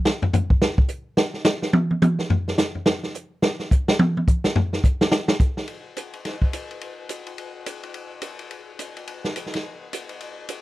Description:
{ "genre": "jazz", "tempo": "213 BPM", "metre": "4/4", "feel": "swing 60% on 8ths", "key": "none", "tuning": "none", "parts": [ { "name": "vintage drum kit", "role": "drums", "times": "0.1-10.6 s", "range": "hi-hat, kick drum, ride cymbal, snare drum, toms", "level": "-21 LUFS", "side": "equal", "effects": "none" } ], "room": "light reverb", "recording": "dry, close 1970s-style studio recording", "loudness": "-19 LUFS", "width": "side -17 dB against mid", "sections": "0.0-5.7 A section; 5.7-10.6 B section", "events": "drum solo 0.0-5.7", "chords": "none" }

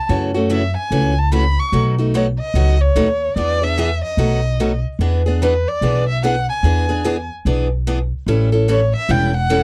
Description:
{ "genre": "acoustic string swing (jazz manouche)", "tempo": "147 BPM", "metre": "4/4", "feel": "swing 62% on 8ths", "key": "E mixolydian", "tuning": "A4 = 445 Hz", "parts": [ { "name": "warm violin", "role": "melody", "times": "0.0-9.6 s", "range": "B4 to C#6", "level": "-23 LUFS", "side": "equal", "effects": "none" }, { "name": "picked steel-string acoustic guitar", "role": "accompaniment", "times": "0.1-9.6 s", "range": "B2 to A4", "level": "-22 LUFS", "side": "equal", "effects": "none" }, { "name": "upright bass", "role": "bass", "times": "0.1-9.6 s", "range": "E1 to F#2", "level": "-20 LUFS", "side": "equal", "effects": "none" } ], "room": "little or no reverb", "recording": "dry, close 1970s-style studio recording", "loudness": "-18 LUFS", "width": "mono", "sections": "0.0-5.0 A section; 5.0-9.6 A section", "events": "none", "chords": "0.0 F#m7; 1.7 B7; 3.4 E7; 4.2 B7; 5.0 E7; 8.3 A7" }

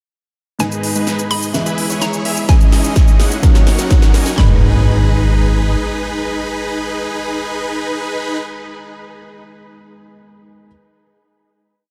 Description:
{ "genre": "EDM, festival progressive house", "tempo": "127 BPM", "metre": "4/4", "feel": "straight", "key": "G# minor", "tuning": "A4 = 439 Hz", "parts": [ { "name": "hollow square pluck", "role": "melody", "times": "0.6-8.4 s", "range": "G#5 to B5", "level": "-29 LUFS", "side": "equal", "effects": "chorus, analog delay" }, { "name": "warm concert grand piano", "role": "accompaniment", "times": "0.6-10.7 s", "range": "G#2 to D#5", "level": "-26 LUFS", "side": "equal", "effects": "ensemble chorus, sidechain pumping, analog delay" }, { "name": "big supersaw lead", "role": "riff", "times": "0.6-8.4 s", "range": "C#4 to G#5", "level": "-24 LUFS", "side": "equal", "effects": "sidechain pumping, low-pass filter, analog delay" }, { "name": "fat analog bass", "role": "bass", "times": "0.6-5.8 s", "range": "G#1 to G#2", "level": "-20 LUFS", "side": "equal", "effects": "sidechain pumping, high-pass filter" }, { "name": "big-room dance drum kit", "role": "drums", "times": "0.6-4.4 s", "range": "hi-hat, shaker, snare drum", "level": "-26 LUFS", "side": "equal", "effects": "high-pass filter on snare, small room reverb, high-pass filter on perc, high-pass filter on hats" }, { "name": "riser and impact", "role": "sound effects", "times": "2.1-8.4 s", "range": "none", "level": "-26 LUFS", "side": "equal", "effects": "none" }, { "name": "big-room dance drum kit", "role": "drums", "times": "2.5-4.5 s", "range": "handclaps, kick drum, snare drum", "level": "-12 LUFS", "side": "equal", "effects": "small room reverb" } ], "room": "light reverb", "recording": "none", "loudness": "-15 LUFS", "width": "mono", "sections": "0.6-4.4 build; 4.4-8.2 final chord", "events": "build-up 0.6-4.4; drum fill 0.6-4.4", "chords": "0.6 G#m; 1.5 E; 2.5 C#madd9; 3.4 D#m7; 4.4 G#m" }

